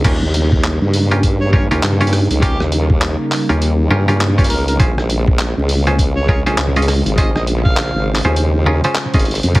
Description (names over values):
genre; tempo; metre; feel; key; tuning
glitch hop; 101 BPM; 4/4; swing 60% on 16ths; Bb dorian; A4 = 441 Hz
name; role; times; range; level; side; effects
warbly tape-like pad; sustained chords; 0.0-9.6 s; Db3 to C5; -23 LUFS; equal; chorus, built-in reverb, vintage 12-bit sampler grit, sidechain pumping
muted clav; stabs; 0.0-9.6 s; Db4 to Eb5; -20 LUFS; equal; sidechain pumping, tape echo
formant-sweep wobble bass; bass; 0.0-9.6 s; Ab1 to G2; -16 LUFS; equal; chorus, tube saturation
boom bap sampler-style drum kit; drums; 0.0-9.6 s; crash cymbal, handclaps, hi-hat, rim click; -21 LUFS; equal; none
electronic kick drum; drums; 0.0-9.6 s; none; -15 LUFS; equal; none
overdriven harmonica; melody; 1.4-8.1 s; G4 to F5; -25 LUFS; equal; tape echo
room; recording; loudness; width
light reverb; heavily compressed radio sound, multiband compression, vinyl crackle; -12 LUFS; side -19 dB against mid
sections
0.0-9.6 A section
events
none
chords
0.0 Eb7; 4.8 Bbm7